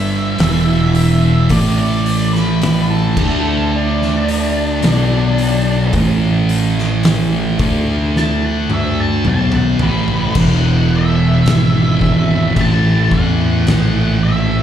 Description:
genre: stoner and doom metal.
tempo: 54 BPM.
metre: 4/4.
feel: straight.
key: unclear.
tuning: A4 = 441 Hz.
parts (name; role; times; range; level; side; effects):
octave-fuzz lead guitar; melody; 0.0-14.6 s; D4 to A5; -22 LUFS; equal; distortion, slapback echo.
thick fuzz guitar; riff; 0.0-14.6 s; E2 to D4; -18 LUFS; left 8 dB; distortion.
thick fuzz guitar; riff; 0.0-14.6 s; E2 to D4; -17 LUFS; right 7 dB; distortion.
fuzz fingered electric bass; bass; 0.0-14.6 s; E1 to E2; -19 LUFS; left 1 dB; overdrive.
oversized low-tuned drum kit; drums; 0.4-13.9 s; crash cymbal, hi-hat, kick drum, snare drum, toms; -20 LUFS; equal; none.
room: little or no reverb.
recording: live gig heard through the venue's PA, club reverb.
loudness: -12 LUFS.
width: side -9 dB against mid.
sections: 0.0-10.4 A section; 10.4-14.6 B section.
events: lead electric guitar solo 0.0-10.4; drum fill 8.2-10.4.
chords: 0.4 E5; 1.5 A5; 3.2 D5; 4.8 B5; 5.9 A5; 7.6 D5; 9.3 A5; 10.4 E5; 12.6 A5.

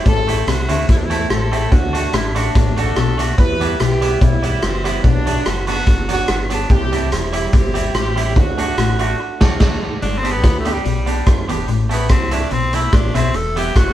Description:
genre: ska.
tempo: 144 BPM.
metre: 4/4.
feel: swing 54% on 8ths.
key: G major.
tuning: A4 = 440 Hz.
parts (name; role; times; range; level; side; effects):
clear horn section; melody; 0.0-9.6 s; E3 to B4; -22 LUFS; right 1 dB; none.
semi-hollow electric guitar; accompaniment; 0.0-13.7 s; F#3 to G4; -24 LUFS; right 3 dB; spring reverb, analog delay.
electric guitar at the edge of break-up; riff; 0.1-13.9 s; E2 to F#3; -26 LUFS; left 5 dB; none.
fingered electric bass; bass; 0.1-13.9 s; E1 to F#2; -21 LUFS; equal; none.
raw garage drum kit; drums; 0.1-13.9 s; crash cymbal, hi-hat, kick drum, rim click, snare drum; -17 LUFS; equal; none.
raspy tenor saxophone; melody; 10.0-13.9 s; G3 to A4; -22 LUFS; left 1 dB; none.
room: moderate small room reverb, RT60 0.5 s.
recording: band playing live in one room.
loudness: -14 LUFS.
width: side -12 dB against mid.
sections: 0.0-10.0 A section; 10.0-13.9 B section.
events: band accent 9.2-10.0; tenor saxophone solo 10.0-13.9.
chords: 0.1 Am; 1.7 D; 3.4 Em; 5.0 Bm; 6.7 C; 8.4 D; 10.0 G; 11.7 Am; 13.3 Em.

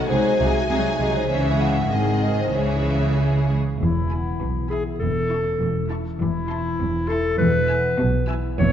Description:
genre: cinematic, playful, whimsical film cue.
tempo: 100 BPM.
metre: 2/4.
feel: straight.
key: C# minor, E major from 3.8 s.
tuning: A4 = 443 Hz.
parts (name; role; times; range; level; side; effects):
rich studio violin section; melody; 0.0-8.5 s; D#5 to E6; -33 LUFS; left 5 dB; none.
vibraphone with soft mallets; melody; 0.0-3.4 s; B#4 to F#5; -25 LUFS; right 3 dB; none.
clear studio violin section; second line; 0.0-8.5 s; B#3 to A5; -31 LUFS; left 3 dB; none.
warm studio viola section; accompaniment; 0.0-8.5 s; D#3 to E4; -28 LUFS; left 1 dB; none.
concert harp; arpeggios; 0.0-8.7 s; G#2 to A4; -29 LUFS; left 8 dB; none.
dark studio double bass section; bass; 0.1-8.7 s; E1 to C#2; -26 LUFS; right 2 dB; none.
rich studio cello section; bass; 0.1-8.7 s; E2 to C#3; -25 LUFS; right 2 dB; none.
clear clarinet; second line; 3.8-8.7 s; E4 to C#5; -24 LUFS; left 2 dB; none.
room: wet scoring stage reverb, RT60 1.5 s.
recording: dark, warm production, nothing above 7.9 kHz.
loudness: -19 LUFS.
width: side -9 dB against mid.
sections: 0.0-3.8 A section; 3.8-8.7 B section.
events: none.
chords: 0.1 G#7/B#; 1.3 C#m; 1.9 G#7; 2.5 C#m; 3.8 E; 5.0 A/E; 6.2 Am/E; 7.4 E.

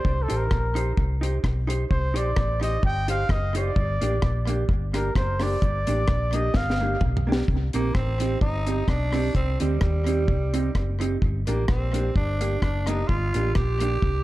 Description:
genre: ska.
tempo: 129 BPM.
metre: 4/4.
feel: swing 54% on 8ths.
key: unclear.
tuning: A4 = 441 Hz.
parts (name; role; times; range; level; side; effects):
breathy trumpet; melody; 0.0-7.0 s; A4 to G5; -29 LUFS; equal; tape echo, plate reverb.
deep reggae drum kit; drums; 0.0-14.1 s; hi-hat, kick drum, rim click, snare drum, toms; -26 LUFS; equal; tape echo.
hollow-body short-scale fingered electric bass; bass; 0.1-14.2 s; F#1 to Eb2; -26 LUFS; equal; none.
vintage hollow-body jazz guitar; accompaniment; 0.3-14.0 s; Bb3 to C5; -30 LUFS; right 2 dB; tape echo, plate reverb.
growling tenor saxophone; melody; 7.7-14.2 s; G3 to G4; -29 LUFS; right 2 dB; tape echo, plate reverb.
room: light reverb.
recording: dark, warm production.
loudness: -22 LUFS.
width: side -16 dB against mid.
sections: 0.0-7.5 A section; 7.5-14.2 B section.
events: trumpet solo 0.0-7.5; drum fill 6.5-7.5.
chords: 0.0 Cm; 3.8 Gm; 7.5 Cm; 11.2 Gm.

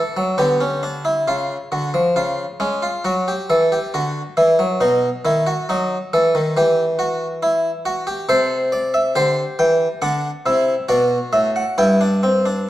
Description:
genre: classical, baroque-style 3-part fugue for harpsichord.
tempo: 68 BPM.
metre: 4/4.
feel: straight.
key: E minor.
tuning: A4 = 439 Hz.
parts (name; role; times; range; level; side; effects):
harpsichord; solo; 0.0-12.7 s; G2 to G5; -16 LUFS; equal; none.
room: moderate recital hall reverb, RT60 1.4 s.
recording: worn, warbling old tape, cassette tape, warbly pitch drift.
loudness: -16 LUFS.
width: side -14 dB against mid.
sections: 0.0-1.3 A section; 1.3-12.7 B section.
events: none.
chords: 0.0 Bm; 1.3 C#; 3.0 N.C.; 4.8 B7; 6.5 Em; 8.3 Am7/C; 10.0 D; 11.8 G5.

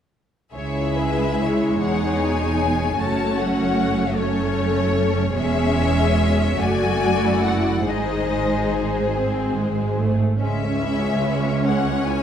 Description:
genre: classical, slow romantic movement for string orchestra.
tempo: 46-51 BPM (dotted quarters).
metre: 6/8.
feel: rubato.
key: C# minor.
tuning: A4 = 441 Hz.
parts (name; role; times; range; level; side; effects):
clear studio violin section; melody; 0.5-12.2 s; C#5 to A5; -27 LUFS; left 6 dB; none.
rich symphonic violin section; second line; 0.5-12.2 s; G#3 to D5; -25 LUFS; left 4 dB; none.
warm symphonic viola section; accompaniment; 0.5-12.2 s; G#3 to F#4; -23 LUFS; equal; none.
rich symphonic cello section; bass; 0.5-12.2 s; C#2 to G#2; -26 LUFS; right 3 dB; none.
rich symphonic double bass section; bass; 0.5-12.2 s; E1 to C#2; -25 LUFS; right 3 dB; none.
room: moderate concert hall reverb, RT60 1.7 s.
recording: dark, warm production.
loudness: -18 LUFS.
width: side -8 dB against mid.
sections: 0.5-12.2 A section.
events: none.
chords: 0.5 C#m; 3.0 F#m; 5.3 C#m/E; 6.6 D/F#; 7.9 G#; 10.4 C#m.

